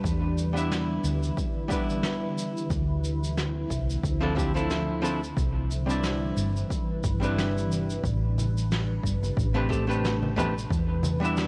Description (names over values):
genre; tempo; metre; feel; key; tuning
sunset chillout; 90 BPM; 4/4; swing 56% on 16ths; A minor; A4 = 439 Hz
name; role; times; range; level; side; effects
shimmering ambient pad; sustained chords; 0.0-11.5 s; C3 to B4; -36 LUFS; equal; chorus, built-in reverb, phaser
hollow-body short-scale fingered electric bass; bass; 0.0-11.5 s; G1 to E2; -30 LUFS; equal; none
electronic kick drum; drums; 0.0-10.9 s; none; -33 LUFS; equal; overdrive
shaker and snare drum; drums; 0.1-11.5 s; none; -37 LUFS; equal; none
archtop guitar, miked and amplified; accompaniment; 0.5-11.5 s; F3 to E5; -32 LUFS; equal; low-pass filter, tape echo
congas; percussion; 8.4-11.2 s; none; -35 LUFS; equal; none
room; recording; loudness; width
light reverb, small room reverb; worn, warbling old tape, cassette tape, warbly pitch drift; -27 LUFS; mono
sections
0.0-11.5 A section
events
filter sweep on hollow-body jazz guitar 0.0-11.5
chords
0.0 Em7; 2.7 Dm9; 5.4 Cmaj9; 8.0 Am11; 10.7 Em7